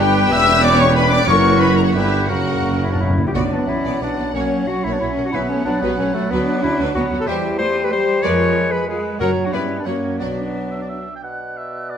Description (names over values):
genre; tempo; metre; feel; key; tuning
classical, dramatic, fast romantic movement for symphony orchestra; 168-190 BPM; 3/4; rubato; B minor; A4 = 442 Hz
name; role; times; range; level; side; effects
warm symphonic violin section; melody; 0.0-10.4 s; D5 to E6; -25 LUFS; left 5 dB; none
silver concert flute; second line; 0.0-12.0 s; A4 to F#6; -26 LUFS; left 2 dB; none
warm clarinet; second line; 0.0-12.0 s; A3 to E5; -24 LUFS; left 2 dB; none
warm oboe; second line; 0.0-12.0 s; A#4 to G5; -30 LUFS; equal; none
warm symphonic violin section; second line; 0.0-10.4 s; E4 to E5; -27 LUFS; left 1 dB; none
clear symphonic viola section; accompaniment; 0.0-10.4 s; F#3 to C#5; -27 LUFS; right 1 dB; none
warm bassoon; accompaniment; 0.0-12.0 s; B2 to Ab3; -27 LUFS; right 3 dB; none
warm French horn section; sustained chords; 0.0-11.0 s; F#3 to A#4; -24 LUFS; left 4 dB; none
warm trumpet section; stabs; 0.0-3.2 s; F#4 to G4; -23 LUFS; left 2 dB; none
clear symphonic cello section; bass; 0.0-11.1 s; E2 to D4; -24 LUFS; right 3 dB; none
mellow tuba; bass; 0.0-3.2 s; E1 to G1; -24 LUFS; right 5 dB; none
rich symphonic double bass section; bass; 0.0-10.5 s; E1 to G2; -26 LUFS; right 2 dB; none
timpani; percussion; 1.3-3.3, 5.3-5.8, 9.2-9.5 s; F#2 to B2; -24 LUFS; left 1 dB; none
room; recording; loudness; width
moderate scoring stage reverb, RT60 1.9 s; none; -15 LUFS; side -8 dB against mid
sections
0.0-3.3 A section; 3.3-11.2 B section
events
timpani fill 2.3-3.3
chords
0.3 C#m7b5/E; 1.3 F#7; 1.9 G; 2.3 F#; 3.3 Bm; 4.3 F#; 5.3 B5; 6.3 Bm; 7.3 C/E; 8.2 Fdim; 9.2 F#; 9.5 G; 9.9 F#; 10.2 Bm